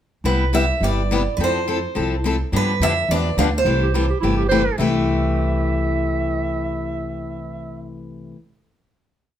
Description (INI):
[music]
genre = acoustic string swing (jazz manouche)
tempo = 211 BPM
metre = 4/4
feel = swing 58% on 8ths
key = C major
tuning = A4 = 441 Hz
[part]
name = picked steel-string acoustic guitar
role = accompaniment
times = 0.2-8.4 s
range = C3 to A4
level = -22 LUFS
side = left 4 dB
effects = none
[part]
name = upright bass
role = bass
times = 0.2-8.3 s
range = G1 to G2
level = -23 LUFS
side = right 1 dB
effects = none
[part]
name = picked steel-string acoustic guitar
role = melody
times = 0.3-4.5 s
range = B4 to F5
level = -22 LUFS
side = right 4 dB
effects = plate reverb
[part]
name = warm clarinet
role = second line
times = 3.8-7.8 s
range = E4 to E5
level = -25 LUFS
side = right 5 dB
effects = none
[sound]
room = moderate studio reverb, RT60 0.8 s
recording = none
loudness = -18 LUFS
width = side -10 dB against mid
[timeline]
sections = 0.2-4.8 A section; 4.8-7.1 final chord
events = none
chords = 0.2 Cmaj7; 1.4 Fmaj7; 2.5 G7; 3.7 C6